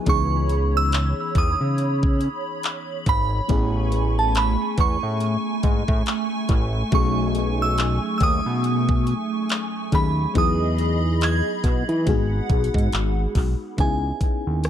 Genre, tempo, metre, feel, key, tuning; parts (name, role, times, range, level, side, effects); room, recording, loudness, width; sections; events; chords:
contemporary R&B; 70 BPM; 4/4; swing 58% on 16ths; C# minor; A4 = 438 Hz
FM electric piano with auto-pan; accompaniment; 0.0-14.7 s; D#3 to G#4; -28 LUFS; left 4 dB; analog delay
hollow soft pad; sustained chords; 0.0-13.8 s; A3 to C#6; -29 LUFS; right 1 dB; ensemble chorus
glassy synth bell; melody; 0.1-14.7 s; G#5 to G#6; -26 LUFS; right 3 dB; chorus, analog delay
fat analog bass; bass; 0.1-14.7 s; G#1 to E3; -22 LUFS; equal
trap drum kit; drums; 0.1-14.7 s; handclaps, hi-hat, kick drum, rim click; -22 LUFS; equal; vintage 12-bit sampler grit
little or no reverb; echo-heavy mix; -19 LUFS; side -10 dB against mid
0.0-13.8 A section
0.1 C#m9; 3.5 Amaj9; 6.9 B13; 10.4 Emaj7; 12.1 G#m7; 13.8 C#m9